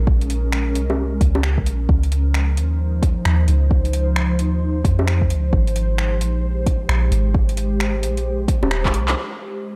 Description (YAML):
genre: future garage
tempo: 132 BPM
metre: 4/4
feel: swing 63% on 16ths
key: unclear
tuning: A4 = 441 Hz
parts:
  - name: ethereal airy pad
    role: sustained chords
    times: 0.0-9.8 s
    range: F3 to Eb5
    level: -28 LUFS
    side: equal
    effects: ensemble chorus, built-in reverb, phaser, sidechain pumping
  - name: soft 808-style bass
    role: bass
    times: 0.0-9.1 s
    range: Eb1 to F2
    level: -21 LUFS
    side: equal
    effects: sidechain pumping
  - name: electronic kick drum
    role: drums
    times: 0.1-8.9 s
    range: none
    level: -21 LUFS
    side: equal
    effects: overdrive
  - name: deep house drum kit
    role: drums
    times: 0.2-9.5 s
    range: bongos, finger snaps, handclaps, hi-hat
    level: -27 LUFS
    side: equal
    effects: overdrive, low-pass filter on hats, low-pass filter on snare, low-pass filter on perc, low-pass filter on room
room: light reverb, digital ambience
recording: none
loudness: -19 LUFS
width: mono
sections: 0.0-9.2 A section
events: drum fill 8.8-9.2; band accent 9.0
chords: 0.0 Bbm7; 1.9 Dbmaj9; 5.5 Abmaj7; 9.2 Fm7